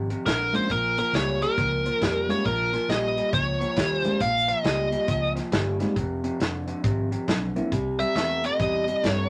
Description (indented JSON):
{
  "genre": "electric blues shuffle",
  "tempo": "137 BPM",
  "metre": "4/4",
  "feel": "swing 63% on 8ths",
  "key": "unclear",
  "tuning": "A4 = 440 Hz",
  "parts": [
    { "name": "electric guitar through a small old amp", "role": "riff", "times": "0.0-9.3 s", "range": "F2 to A3", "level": "-32 LUFS", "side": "equal", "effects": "none" },
    { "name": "vintage muted fingered electric bass", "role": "bass", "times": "0.0-9.3 s", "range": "F1 to G2", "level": "-33 LUFS", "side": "equal", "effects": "none" },
    { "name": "natural country drum kit", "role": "drums", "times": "0.1-9.2 s", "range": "hi-hat, kick drum, snare drum", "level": "-31 LUFS", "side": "equal", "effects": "none" },
    { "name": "biting lead guitar", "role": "melody", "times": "0.3-5.3, 8.0-9.3 s", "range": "Bb4 to F5", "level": "-27 LUFS", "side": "equal", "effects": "overdrive" },
    { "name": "reed electric piano", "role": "accompaniment", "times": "0.5-7.7 s", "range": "Ab3 to F4", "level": "-31 LUFS", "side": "equal", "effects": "none" }
  ],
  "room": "moderate studio reverb, RT60 0.5 s",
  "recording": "none",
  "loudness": "-25 LUFS",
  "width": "mono",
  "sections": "0.0-9.3 A section",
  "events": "none",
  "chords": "0.0 Fm; 0.7 Bbm; 6.0 Fm; 7.7 C",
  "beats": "0.26 | 0.70 1.14 1.57 2.01 | 2.45 2.89 3.33 3.77 | 4.21 4.65 5.09 5.52 | 5.96 6.40 6.84 7.28 | 7.72 8.16 8.60 9.04"
}